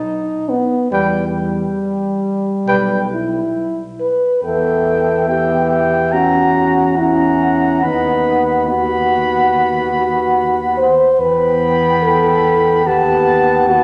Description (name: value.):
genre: classical, brass quintet.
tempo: 71 BPM.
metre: 4/4.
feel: straight.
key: E minor.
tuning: A4 = 440 Hz.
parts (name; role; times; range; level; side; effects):
mellow French horn; accompaniment; 0.0-13.8 s; G3 to C5; -19 LUFS; equal; none.
bright trumpet; melody; 0.9-13.8 s; G5 to B5; -23 LUFS; equal; none.
mellow flugelhorn; second line; 0.9-13.8 s; B4 to G5; -22 LUFS; equal; none.
clear trombone; accompaniment; 0.9-13.8 s; G3 to C#4; -21 LUFS; equal; none.
mellow tuba; bass; 0.9-13.8 s; B1 to E2; -26 LUFS; equal; none.
room: wet scoring stage reverb, RT60 1.9 s.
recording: nothing above 10.3 kHz.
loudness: -15 LUFS.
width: mono.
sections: 0.0-4.4 A section; 4.4-13.8 B section.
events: none.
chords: 0.0 B; 0.9 Em; 6.1 F#7/E; 7.8 B/D#; 11.2 Em; 12.9 B7/D#.